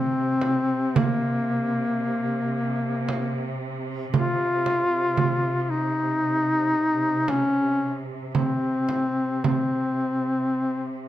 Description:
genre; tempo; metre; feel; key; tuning
caucasian folk, Caucasian lament; 56 BPM; 4/4; rubato; C phrygian; A4 = 442 Hz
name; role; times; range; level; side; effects
warm duduk; melody; 0.0-11.1 s; Bb3 to F4; -23 LUFS; left 2 dB; none
warm studio cello section; drone; 0.0-11.1 s; C3; -31 LUFS; right 1 dB; none
frame drum; percussion; 0.4-9.7 s; none; -26 LUFS; right 6 dB; none
room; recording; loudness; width
light reverb; close, detailed microphones; -22 LUFS; side -13 dB against mid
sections
0.0-11.1 A section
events
none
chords
none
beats
0.95 2.02 3.08 | 4.13 5.17 6.22 7.28 | 8.35 9.44 10.56

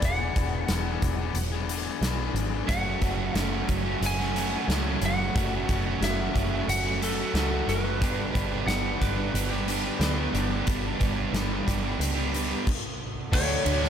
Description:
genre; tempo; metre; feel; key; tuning
rock, shoegaze and dream pop; 90 BPM; 4/4; straight; unclear; A4 = 442 Hz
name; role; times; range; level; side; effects
lightly driven lead guitar; melody; 0.0-13.9 s; A4 to G#5; -33 LUFS; left 1 dB; digital delay
overdriven electric guitar; riff; 0.0-13.9 s; D3 to G#4; -33 LUFS; left 10 dB; wide subtle chorus
picked electric bass; bass; 0.0-13.9 s; E1 to D2; -30 LUFS; equal; none
huge arena drum kit; drums; 0.0-13.9 s; crash cymbal, hi-hat, kick drum, ride cymbal, snare drum; -30 LUFS; equal; none
overdriven semi-hollow guitar; riff; 2.7-13.9 s; F#2 to G4; -30 LUFS; right 10 dB; reverse reverb
room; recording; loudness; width
light reverb; none; -24 LUFS; side -8 dB against mid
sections
0.0-13.3 A section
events
none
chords
0.0 E5; 2.7 F#m; 8.0 G; 13.3 Dmaj7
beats
| 0.03 0.70 1.36 2.03 | 2.70 3.36 4.03 4.69 | 5.36 6.03 6.69 7.36 | 8.02 8.69 9.36 10.02 | 10.69 11.35 12.02 12.68 | 13.34

